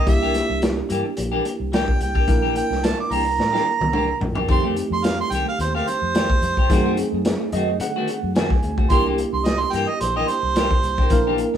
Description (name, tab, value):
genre	straight-eighth soul blues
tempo	109 BPM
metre	4/4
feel	swing 54% on 16ths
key	C mixolydian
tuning	A4 = 441 Hz
part	clear harmonica	second line	0.0-11.4 s	C5 to D6	-23 LUFS	right 5 dB	overdrive
part	tine electric piano	accompaniment	0.0-11.6 s	A3 to Ab5	-25 LUFS	right 1 dB	medium stereo tremolo
part	clean electric guitar	stabs	0.0-11.6 s	Eb3 to G4	-26 LUFS	left 4 dB	none
part	vintage muted fingered electric bass	bass	0.1-11.6 s	Bb1 to D3	-27 LUFS	left 1 dB	none
part	crunchy breakbeat drum kit	drums	0.1-11.6 s	hi-hat, kick drum, snare drum, toms	-22 LUFS	equal	none
room	moderate studio reverb, RT60 0.6 s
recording	band playing live in one room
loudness	-18 LUFS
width	side -9 dB against mid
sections	0.0-11.6 A section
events	harmonica solo 0.0-11.6; drum fill 3.4-4.5; tine electric piano fill 7.3-8.9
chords	0.0 C9; 4.5 F9; 6.7 F#dim7; 8.9 C9